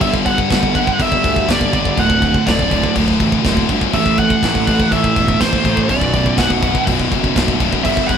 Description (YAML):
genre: heavy metal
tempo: 123 BPM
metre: 4/4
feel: straight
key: B minor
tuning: A4 = 440 Hz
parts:
  - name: high-gain lead guitar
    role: melody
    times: 0.0-8.2 s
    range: C5 to F#5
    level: -18 LUFS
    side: right 2 dB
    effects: distortion
  - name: distorted electric guitar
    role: riff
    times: 0.0-8.2 s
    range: B1 to A3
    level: -21 LUFS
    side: right 6 dB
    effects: distortion
  - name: fuzz guitar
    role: riff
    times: 0.0-8.2 s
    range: B1 to A3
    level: -23 LUFS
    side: right 1 dB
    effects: distortion
  - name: scooped high-gain guitar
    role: riff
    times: 0.0-8.2 s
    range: B1 to A3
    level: -19 LUFS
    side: left 7 dB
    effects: distortion
  - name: fuzz picked electric bass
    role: bass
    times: 0.0-8.2 s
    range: B0 to D2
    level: -21 LUFS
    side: equal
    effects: overdrive
  - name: tight metal drum kit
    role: drums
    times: 0.0-8.2 s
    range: crash cymbal, kick drum, snare drum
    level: -19 LUFS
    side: equal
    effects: none
room: moderate studio reverb, RT60 0.8 s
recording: band playing live in one room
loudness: -13 LUFS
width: side -8 dB against mid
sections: 0.0-8.2 A section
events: none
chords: 0.0 G5; 2.0 D; 3.9 Am; 5.9 Bm